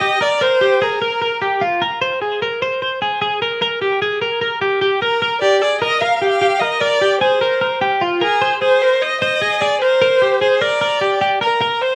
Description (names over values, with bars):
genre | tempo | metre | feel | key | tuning
indie pop | 150 BPM | 4/4 | straight | unclear | A4 = 440 Hz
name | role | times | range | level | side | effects
rich violin | melody | 0.0-1.4, 5.0-11.9 s | Ab4 to F5 | -18 LUFS | equal | none
twelve-string electric guitar | arpeggios | 0.0-11.9 s | F4 to C5 | -19 LUFS | equal | digital delay
room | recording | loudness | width
moderate small room ambience, RT60 0.5 s | small room ambience | -16 LUFS | mono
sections
0.0-11.6 A section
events
none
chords
0.4 Bb5; 2.0 Ab; 3.4 Gm; 6.8 Bb; 8.4 Ab; 9.8 C5; 10.8 Bb6